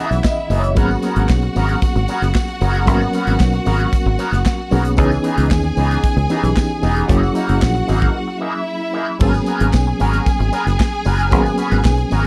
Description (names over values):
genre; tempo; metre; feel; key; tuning
disco; 114 BPM; 4/4; straight; G# minor; A4 = 440 Hz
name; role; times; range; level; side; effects
bright studio string section; second line; 0.0-12.3 s; E4 to G#5; -27 LUFS; equal; none
barky reed electric piano; accompaniment; 0.0-12.3 s; E3 to F#5; -24 LUFS; equal; overdrive, fast tremolo
electric guitar with an envelope filter; accompaniment; 0.0-12.2 s; E3 to B4; -26 LUFS; equal; wah
fingered electric bass; bass; 0.1-12.3 s; E1 to D#2; -20 LUFS; equal; none
modern studio drum kit; drums; 0.1-12.3 s; crash cymbal, handclaps, hi-hat, kick drum, snare drum; -20 LUFS; equal; none
tambourine; percussion; 0.2-12.2 s; none; -43 LUFS; equal; none
room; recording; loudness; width
little or no reverb; dry, close 1970s-style studio recording; -17 LUFS; mono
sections
0.0-9.2 A section; 9.2-12.3 A section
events
reed electric piano fill 0.0-0.8; break 8.2-9.2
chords
0.0 C#m9; 0.8 G#m11; 5.0 C#m9; 7.1 F#13; 9.2 G#m11